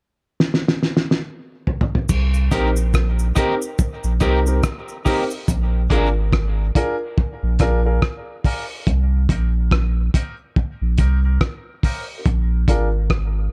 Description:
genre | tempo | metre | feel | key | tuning
dub reggae | 71 BPM | 4/4 | swing 60% on 16ths | C minor | A4 = 440 Hz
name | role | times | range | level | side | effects
cloth-damped thuddy drum kit | drums | 0.4-13.3 s | crash cymbal, hi-hat, kick drum, rim click, snare drum, toms | -22 LUFS | equal | none
warm sub bass | bass | 2.1-13.5 s | Ab1 to C2 | -20 LUFS | equal | none
cabasa | percussion | 2.1-5.7 s | none | -38 LUFS | equal | high-pass filter on perc
electric guitar at the edge of break-up | accompaniment | 2.5-6.1 s | D4 to Bb4 | -28 LUFS | equal | high-pass filter, dub echo
warm upright piano | stabs | 2.5-12.9 s | C4 to Bb4 | -28 LUFS | equal | high-pass filter, dub echo
room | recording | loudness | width
small room reverb | dark, warm production | -20 LUFS | mono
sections
0.0-2.1 A section; 2.1-13.5 B section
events
drum fill 0.4-2.1; part muted 5.5-13.5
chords
0.0 N.C.; 2.1 Cm7; 5.5 Bb7; 8.9 Cm7; 12.3 Bb7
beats
0.40 1.24 | 2.09 2.94 3.78 4.63 | 5.48 6.32 7.17 8.02 | 8.87 9.71 10.56 11.41 | 12.25 13.10

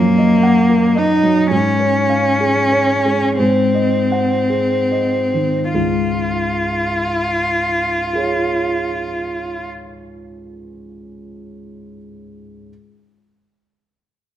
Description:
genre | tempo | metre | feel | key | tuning
classical, romantic duo for cello and grand piano | 24-39 BPM (dotted quarters) | 6/8 | rubato | Db major | A4 = 440 Hz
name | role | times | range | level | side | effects
clear cello | melody | 0.0-9.7 s | Bb3 to F4 | -16 LUFS | left 1 dB | none
warm grand piano | accompaniment | 0.0-12.7 s | Db2 to Gb5 | -20 LUFS | right 1 dB | none
room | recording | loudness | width
moderate scoring stage reverb, RT60 1.6 s | none | -14 LUFS | side -11 dB against mid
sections
0.0-5.8 A section; 5.8-10.5 B section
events
slowing down 0.0-5.8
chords
0.0 Ebm/Gb; 1.5 Db/Ab; 3.4 Ab7; 5.8 Db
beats
| 1.51 3.39 | 5.75 8.13

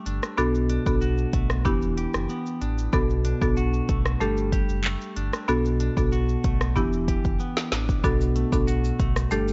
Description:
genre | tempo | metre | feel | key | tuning
dancehall | 94 BPM | 4/4 | straight | B minor | A4 = 440 Hz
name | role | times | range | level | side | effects
marimba with medium mallets | accompaniment | 0.0-9.5 s | A3 to A4 | -30 LUFS | equal | none
clean electric guitar | arpeggios | 0.0-9.5 s | B2 to G4 | -33 LUFS | equal | phaser, tape echo
sub bass with octave | bass | 0.1-9.5 s | E1 to B1 | -29 LUFS | equal | none
afro-pop drum kit | drums | 0.1-9.5 s | handclaps, hi-hat, kick drum, rim click, shaker, snare drum | -28 LUFS | equal | vintage 12-bit sampler grit
maracas | percussion | 8.0-9.5 s | none | -45 LUFS | equal | none
room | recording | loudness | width
little or no reverb | worn, warbling old tape, cassette tape, warbly pitch drift, nothing above 7.8 kHz | -24 LUFS | mono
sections
0.0-8.0 A section; 8.0-9.5 B section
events
drum fill 6.8-8.0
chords
0.4 Bm7; 1.7 Em7; 2.9 Bm7; 4.2 Gsus2; 5.5 Bm7; 6.8 Em7; 8.0 Bm7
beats
| 0.38 1.01 1.65 2.29 | 2.93 3.57 4.21 4.84 | 5.48 6.12 6.76 7.40 | 8.04 8.68 9.31

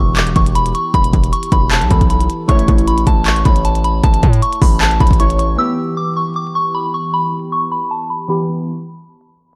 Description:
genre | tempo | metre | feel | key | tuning
hip hop, trap | 155 BPM | 4/4 | half-time | E dorian | A4 = 440 Hz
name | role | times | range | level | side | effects
soft synth bell | melody | 0.0-8.7 s | A5 to E6 | -20 LUFS | equal | chorus, low-pass filter
glassy digital keys | accompaniment | 0.0-8.7 s | E3 to C#5 | -24 LUFS | equal | chorus, phaser, low-pass filter
distorted 808-style bass | bass | 0.0-5.6 s | E1 to A2 | -18 LUFS | equal | distortion
minimal click drum kit | drums | 0.2-5.5 s | handclaps, hi-hat, kick drum | -16 LUFS | equal | none
room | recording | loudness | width
digital ambience | dark, warm production, vinyl crackle, low-pass filter | -15 LUFS | mono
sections
0.0-5.6 A section; 5.6-8.7 B section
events
filter sweep 5.6-8.7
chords
0.0 Em; 2.5 A; 5.6 Em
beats
0.17 0.55 | 0.94 1.33 1.71 2.10 | 2.49 2.88 3.26 3.65 | 4.04 4.42 4.81 5.20 | 5.58 5.97 6.36 6.75 | 7.13 7.52 7.91 8.29

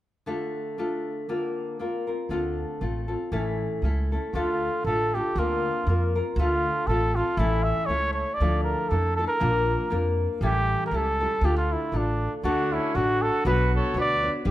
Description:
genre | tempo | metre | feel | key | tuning
mexican folk, mariachi | 119 BPM | 2/4 | swing 55% on 8ths | D minor | A4 = 440 Hz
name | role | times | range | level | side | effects
nylon-string guitar | accompaniment | 0.3-14.5 s | A2 to C#5 | -28 LUFS | left 2 dB | none
upright bass | bass | 2.3-14.5 s | G1 to F2 | -27 LUFS | equal | none
mellow trumpet | melody | 4.3-14.5 s | D4 to E5 | -26 LUFS | right 1 dB | none
clear trumpet | second line | 12.5-14.3 s | C#4 to B4 | -33 LUFS | right 5 dB | tape echo
room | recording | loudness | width
light reverb | none | -23 LUFS | side -14 dB against mid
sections
0.3-4.3 A section; 4.3-12.4 B section; 12.4-14.5 C section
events
none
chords
0.3 Dm; 1.3 Bbadd9/D; 2.3 Dm7; 3.3 A; 4.3 Dm; 5.4 Bbadd9/D; 6.4 Dm7; 7.4 A; 8.4 Dmadd9; 9.4 Bb; 10.4 A7; 11.4 Dm; 12.4 D; 13.4 Bmadd9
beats
| 0.28 0.79 | 1.30 1.81 | 2.31 2.82 | 3.32 3.83 | 4.35 4.86 | 5.36 5.87 | 6.37 6.88 | 7.38 7.89 | 8.40 8.91 | 9.42 9.92 | 10.43 10.93 | 11.43 11.93 | 12.44 12.95 | 13.45 13.95 | 14.45

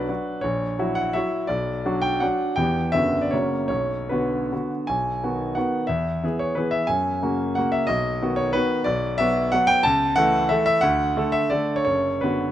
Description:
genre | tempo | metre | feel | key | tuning
classical, romantic triple-time dance for piano with dotted rhythms | 140-193 BPM | 3/4 | rubato | B minor, B major from 4.9 s, B minor from 8.9 s | A4 = 440 Hz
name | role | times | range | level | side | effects
warm grand piano | solo | 0.0-12.5 s | F#1 to A5 | -20 LUFS | equal | none
room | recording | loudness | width
light reverb | close, detailed microphones | -20 LUFS | side -12 dB against mid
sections
0.0-4.9 A section; 4.9-12.5 B section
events
none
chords
0.4 F#7/A#; 1.5 Bm; 2.6 Em; 2.9 Bm/F#; 3.3 F#; 3.7 Bm; 4.9 B; 5.9 E; 6.9 F#; 7.9 B; 8.9 Bm; 9.9 A/C#; 10.8 D; 11.9 Bm/F#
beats
0.10 | 0.44 0.79 1.15 | 1.50 1.86 2.22 | 2.58 2.94 3.33 | 3.70 4.11 4.52 | 4.89 5.22 5.56 | 5.89 6.23 6.57 | 6.89 7.23 7.57 | 7.89 8.22 8.55 | 8.87 9.20 9.54 | 9.85 10.17 10.51 | 10.83 11.16 11.52 | 11.87 12.24

